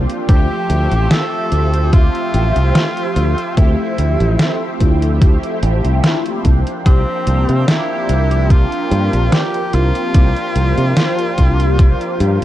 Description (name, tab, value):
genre	vaporwave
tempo	73 BPM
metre	4/4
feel	swing 53% on 16ths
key	D minor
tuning	A4 = 440 Hz
part	mellow synth brass	accompaniment	0.0-12.4 s	F3 to E5	-20 LUFS	equal	phaser, ensemble chorus, analog delay
part	lush unison pad	sustained chords	0.0-12.4 s	F3 to C6	-28 LUFS	right 1 dB	chorus, phaser
part	fingered electric bass	bass	0.0-12.4 s	A1 to C3	-15 LUFS	equal	none
part	detuned 8-bit digital drum machine	drums	0.1-12.4 s	hi-hat, snare drum	-17 LUFS	equal	overdrive
part	edgy tenor saxophone	melody	0.3-12.4 s	C4 to A4	-22 LUFS	equal	tape echo
part	electronic kick drum	drums	0.3-12.0 s	none	-11 LUFS	equal	overdrive
room	little or no reverb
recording	dark, warm production, cassette tape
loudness	-12 LUFS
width	side -14 dB against mid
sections	0.0-12.4 A section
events	none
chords	0.3 Dm11; 6.5 C7sus4